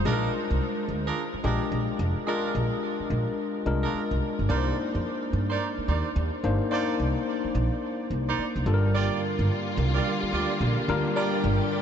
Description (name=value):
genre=R&B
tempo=108 BPM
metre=4/4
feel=swing 63% on 16ths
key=unclear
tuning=A4 = 442 Hz
part: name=tine electric piano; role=accompaniment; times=0.0-11.8 s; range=G3 to C5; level=-28 LUFS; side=left 3 dB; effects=tube saturation
part: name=clear horn section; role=stabs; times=0.0-11.4 s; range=D4 to D5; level=-32 LUFS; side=right 5 dB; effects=tape echo
part: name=upright bass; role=bass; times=0.0-11.6 s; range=F1 to G2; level=-27 LUFS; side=right 1 dB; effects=none
part: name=warm studio string section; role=sustained chords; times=8.9-11.8 s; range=D3 to G4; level=-30 LUFS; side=right 1 dB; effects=none
room=moderate huge ambient reverb, RT60 7.4 s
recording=dreamy mix soaked in reverb, nothing above 7.8 kHz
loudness=-24 LUFS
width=side -8 dB against mid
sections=0.0-4.5 A section; 4.5-11.8 B section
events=none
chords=0.0 Bb7; 4.5 Cm9; 8.7 Gm7